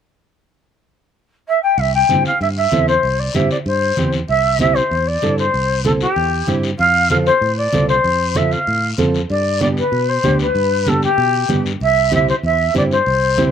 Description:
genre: latin, cumbia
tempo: 191 BPM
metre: 4/4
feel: straight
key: C major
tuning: A4 = 440 Hz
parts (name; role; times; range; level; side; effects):
- shakuhachi; melody; 1.5-13.5 s; G4 to G5; -16 LUFS; left 1 dB; slapback echo
- fingered electric bass; bass; 1.8-13.5 s; C2 to B2; -21 LUFS; right 1 dB; none
- congas; percussion; 1.8-13.5 s; none; -23 LUFS; left 1 dB; none
- guiro; percussion; 1.8-13.5 s; none; -30 LUFS; left 9 dB; none
- nylon-string guitar; accompaniment; 2.1-13.5 s; B3 to A4; -22 LUFS; right 4 dB; slapback echo
room: little or no reverb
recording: recorded outdoors, with no room sound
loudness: -14 LUFS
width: side -8 dB against mid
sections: 0.5-1.8 A section; 1.8-4.3 B section; 4.3-13.5 C section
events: none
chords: 0.5 N.C.; 1.8 C; 6.8 F; 9.3 G; 11.8 C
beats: | 0.53 0.84 1.15 1.47 | 1.78 2.09 2.40 2.72 | 3.03 3.35 3.66 3.97 | 4.29 4.60 4.91 5.23 | 5.54 5.85 6.17 6.48 | 6.79 7.11 7.42 7.73 | 8.05 8.36 8.67 8.99 | 9.30 9.61 9.93 10.24 | 10.55 10.87 11.18 11.50 | 11.81 12.12 12.44 12.75 | 13.06 13.38

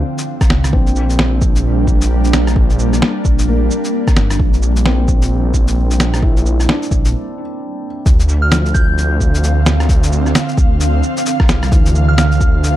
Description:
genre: future garage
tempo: 131 BPM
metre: 4/4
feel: swing 60% on 16ths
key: D minor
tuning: A4 = 440 Hz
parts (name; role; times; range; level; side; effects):
- felt-muted upright piano; accompaniment; 0.0-12.8 s; E3 to E4; -24 LUFS; left 1 dB; sidechain pumping, tape echo
- ethereal airy pad; sustained chords; 0.0-12.8 s; D3 to F5; -20 LUFS; right 2 dB; ensemble chorus, built-in reverb, sidechain pumping
- swelling detuned saw bass; bass; 0.0-12.8 s; G1 to D2; -15 LUFS; equal; tube saturation, sidechain pumping
- electronic shaker, rim click, snare drum and cabasa; drums; 0.2-12.7 s; none; -19 LUFS; equal; overdrive
- electronic kick drum; drums; 0.4-12.5 s; none; -14 LUFS; equal; overdrive
- soft synth bell; melody; 8.4-9.1, 12.1-12.3 s; F6 to G6; -22 LUFS; right 1 dB; chorus, vintage 12-bit sampler grit, tape echo
room: digital ambience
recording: dark, warm production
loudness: -11 LUFS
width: side -13 dB against mid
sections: 0.0-8.1 A section; 8.1-12.8 B section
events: break 7.1-8.1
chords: 0.0 Dm7; 0.7 Bb69; 8.1 Dm7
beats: 0.27 | 0.73 1.19 1.64 2.10 | 2.56 3.02 3.48 3.93 | 4.39 4.85 5.31 5.77 | 6.22 6.68 7.14 7.60 | 8.06 8.51 8.97 9.43 | 9.89 10.35 10.80 11.26 | 11.72 12.18 12.64

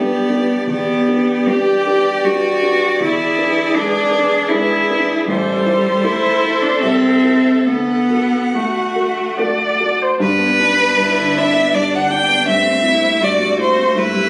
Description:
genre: classical, slow romantic movement for piano quartet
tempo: 68-82 BPM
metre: 3/4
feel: rubato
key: G major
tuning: A4 = 440 Hz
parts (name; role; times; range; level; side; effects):
- rich violin; melody; 0.0-14.3 s; B4 to G5; -20 LUFS; equal; none
- rich cello; second line; 0.0-14.3 s; G3 to G4; -19 LUFS; equal; none
- dark baby grand piano; accompaniment; 0.0-14.3 s; A1 to C5; -24 LUFS; equal; none
- rich viola; accompaniment; 0.0-14.3 s; A3 to D5; -24 LUFS; equal; none
room: moderate recital hall reverb, RT60 1.5 s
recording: recorded on a phone in the room, club reverb, compression, nothing above 10.7 kHz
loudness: -15 LUFS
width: mono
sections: 0.0-10.2 A section; 10.2-14.3 B section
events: none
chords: 0.0 G/B; 0.7 Em7; 3.0 E7; 5.3 Am7; 6.8 Am/C; 7.7 D; 10.2 G; 12.5 Am7/G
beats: | 0.70 1.50 2.27 | 3.02 3.76 4.52 | 5.29 6.05 6.84 | 7.68 8.55 9.38 | 10.21 11.00 11.74 | 12.48 13.23 13.96

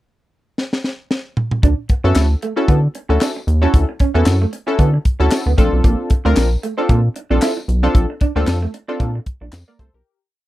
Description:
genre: early-eighties boogie funk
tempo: 114 BPM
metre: 4/4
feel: swing 56% on 16ths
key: unclear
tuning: A4 = 440 Hz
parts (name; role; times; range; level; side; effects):
- tight funk drum kit; drums; 0.6-9.9 s; handclaps, hi-hat, kick drum, snare drum, toms; -16 LUFS; equal; none
- electric guitar through a small old amp; riff; 1.6-9.9 s; A3 to E4; -24 LUFS; right 6 dB; wide subtle chorus
- rubbery square bass; bass; 1.6-10.0 s; Bb1 to D3; -15 LUFS; equal; none
- funky polysynth comp; accompaniment; 2.0-10.2 s; C4 to D5; -20 LUFS; left 1 dB; chorus
- tambourine; percussion; 2.1-9.7 s; none; -35 LUFS; left 5 dB; none
room: little or no reverb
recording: dry, close 1970s-style studio recording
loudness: -14 LUFS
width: side -16 dB against mid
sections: 0.0-1.6 pickup bar; 1.6-10.1 verse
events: drum fill 0.6-1.6; fade-out 7.9-10.1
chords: 0.0 N.C.; 1.6 Dmaj7; 5.6 Bbmaj7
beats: 0.05 0.58 1.11 | 1.63 2.16 2.69 3.21 | 3.74 4.26 4.79 5.32 | 5.84 6.37 6.90 7.42 | 7.95 8.47 9.00 9.53

